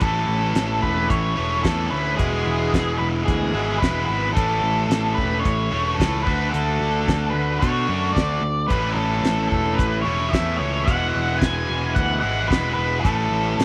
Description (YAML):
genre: classic rock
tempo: 111 BPM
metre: 4/4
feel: straight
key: A major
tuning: A4 = 442 Hz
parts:
  - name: octave-fuzz lead guitar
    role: melody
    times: 0.0-13.6 s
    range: G#4 to G#5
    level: -26 LUFS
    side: equal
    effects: distortion, slapback echo
  - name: distorted electric guitar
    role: riff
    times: 0.0-13.6 s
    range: E2 to F#4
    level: -27 LUFS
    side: equal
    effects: overdrive
  - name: overdriven picked electric bass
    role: bass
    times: 0.0-13.6 s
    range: E1 to B2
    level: -28 LUFS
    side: equal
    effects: none
  - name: damped 70s drum kit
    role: drums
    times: 0.0-13.6 s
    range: hi-hat, kick drum, snare drum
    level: -25 LUFS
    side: equal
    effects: none
room: light reverb, small room reverb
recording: none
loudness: -21 LUFS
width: mono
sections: 0.0-13.6 A section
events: none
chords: 0.0 A; 2.2 E; 4.4 A; 6.3 D; 8.7 A; 10.9 Eadd9; 13.0 A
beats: | 0.02 0.56 1.10 1.65 | 2.19 2.73 3.28 3.82 | 4.37 4.91 5.45 5.99 | 6.54 7.08 7.62 8.16 | 8.71 9.25 9.79 10.33 | 10.88 11.42 11.96 12.50 | 13.05 13.59